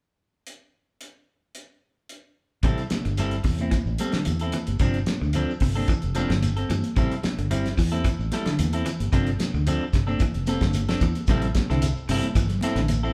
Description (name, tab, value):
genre	afrobeat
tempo	111 BPM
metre	4/4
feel	straight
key	A minor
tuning	A4 = 442 Hz
part	cloth-damped thuddy drum kit	drums	0.5-13.0 s	hi-hat, kick drum, snare drum	-29 LUFS	equal	none
part	clean electric guitar	arpeggios	2.6-13.0 s	C3 to E3	-33 LUFS	equal	tremolo
part	clean electric guitar	stabs	2.6-13.1 s	F3 to A4	-32 LUFS	equal	none
part	fingered electric bass	bass	2.6-13.1 s	F1 to G2	-29 LUFS	equal	none
part	shekere	percussion	2.6-13.1 s	none	-39 LUFS	equal	none
part	congas	percussion	2.9-13.0 s	none	-34 LUFS	equal	none
room	moderate large studio reverb, RT60 1.2 s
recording	band playing live in one room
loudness	-24 LUFS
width	mono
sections	0.5-2.6 A section; 2.6-11.3 B section; 11.3-13.1 C section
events	none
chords	0.5 N.C.; 2.6 Am7; 4.8 G9sus4; 7.0 Am7; 9.1 G9sus4; 11.3 Am7